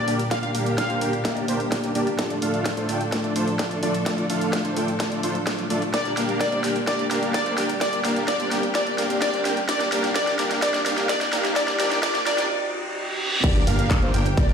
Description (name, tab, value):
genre	EDM, festival progressive house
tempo	128 BPM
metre	4/4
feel	straight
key	G minor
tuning	A4 = 441 Hz
part	plucky unison lead	melody	0.0-1.4, 5.9-12.5 s	D5 to F5	-26 LUFS	left 1 dB	tape echo
part	warm chamber string section	sustained chords	0.0-14.5 s	A2 to A4	-31 LUFS	equal	sidechain pumping, low-pass filter
part	dense compressed supersaw	riff	0.0-14.5 s	A3 to G5	-25 LUFS	equal	vintage 12-bit sampler grit, sidechain pumping, low-pass filter, tape echo
part	riser, reverse cymbal and impact	sound effects	2.1-14.5 s	none	-32 LUFS	equal	none
part	big-room dance drum kit	drums	0.1-14.5 s	crash cymbal, handclaps, hi-hat, snare drum	-29 LUFS	equal	overdrive, high-pass filter on hats, high-pass filter on snare, high-pass filter on cymbals
part	electronic kick drum	drums	0.3-14.5 s	none	-23 LUFS	equal	overdrive, high-pass filter on kick
part	wide unison lead	arpeggios	13.4-14.5 s	C5 to G5	-30 LUFS	right 2 dB	wide subtle chorus, sidechain pumping, tape echo
part	fat analog bass	bass	13.4-14.5 s	G1	-24 LUFS	equal	sidechain pumping
room	moderate lush hall reverb, RT60 1.7 s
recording	played on a big sound system in a bare room, stone room reverb, high-pass filter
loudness	-21 LUFS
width	side -7 dB against mid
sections	0.0-13.4 A section; 13.4-14.5 B section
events	build-up 0.0-13.4; drum fill 0.0-12.5; filter sweep on supersaw synth 0.0-13.4; filter sweep on string section 0.0-13.4; filter sweep 0.0-13.4; break 12.5-13.4; reverse cymbal 12.5-13.4; drop 13.4-14.5; impact 13.4-14.5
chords	0.0 Gm; 2.2 Dm; 5.9 Gm; 9.7 Cm; 13.4 Gm